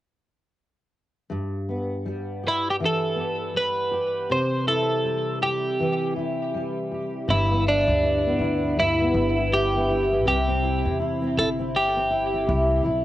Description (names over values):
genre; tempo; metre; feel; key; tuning
pop; 80 BPM; 4/4; swing 60% on 16ths; G major; A4 = 440 Hz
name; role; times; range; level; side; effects
fingerpicked steel-string acoustic guitar; accompaniment; 1.3-13.0 s; G2 to G4; -26 LUFS; equal; double-tracked left and right, cassette tape
twelve-string electric guitar; melody; 2.5-12.8 s; D4 to C5; -23 LUFS; equal; tape echo
upright bass; bass; 7.3-13.0 s; G1 to E2; -27 LUFS; equal; none
room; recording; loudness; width
moderate small room reverb, RT60 0.5 s; home recording on cassette; -21 LUFS; side -14 dB against mid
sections
1.3-7.3 A section; 7.3-13.0 B section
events
none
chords
1.3 G6; 4.3 C; 7.3 G6; 10.3 C